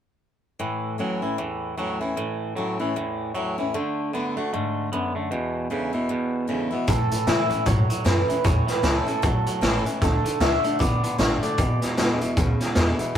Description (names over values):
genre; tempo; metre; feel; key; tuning
rockabilly; 153 BPM; 4/4; swing 59% on 8ths; A major; A4 = 440 Hz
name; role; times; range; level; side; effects
picked steel-string acoustic guitar; accompaniment; 0.6-13.2 s; E2 to F#4; -30 LUFS; left 3 dB; none
twangy electric guitar; riff; 0.6-13.2 s; E2 to B3; -27 LUFS; right 2 dB; none
electric guitar through a small old amp; melody; 6.9-11.9 s; A4 to E5; -26 LUFS; right 1 dB; tremolo
upright bass; bass; 6.9-13.2 s; A1 to C#3; -26 LUFS; equal; none
raw garage drum kit; drums; 6.9-13.2 s; hi-hat, kick drum, snare drum; -23 LUFS; equal; none
room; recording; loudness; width
moderate booth ambience, RT60 0.2 s; rough rehearsal-room recording; -21 LUFS; side -9 dB against mid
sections
0.6-6.9 A section; 6.9-13.2 B section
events
none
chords
0.6 A; 3.7 D; 5.3 E7; 6.9 A; 10.0 D; 11.6 E7